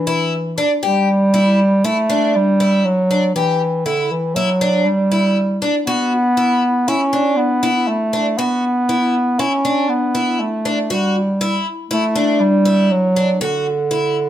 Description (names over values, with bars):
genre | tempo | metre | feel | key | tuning
progressive instrumental, progressive | 119 BPM | 5/4 | straight | E dorian | A4 = 440 Hz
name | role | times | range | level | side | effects
warm bass clarinet | melody | 0.0-14.3 s | D3 to C#4 | -16 LUFS | right 1 dB | none
picked twelve-string acoustic guitar | arpeggios | 0.1-14.2 s | D4 to G4 | -20 LUFS | left 2 dB | none
room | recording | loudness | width
moderate studio reverb, RT60 0.7 s | none | -14 LUFS | side -11 dB against mid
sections
0.0-14.3 A section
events
none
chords
0.0 Em7; 5.9 Bm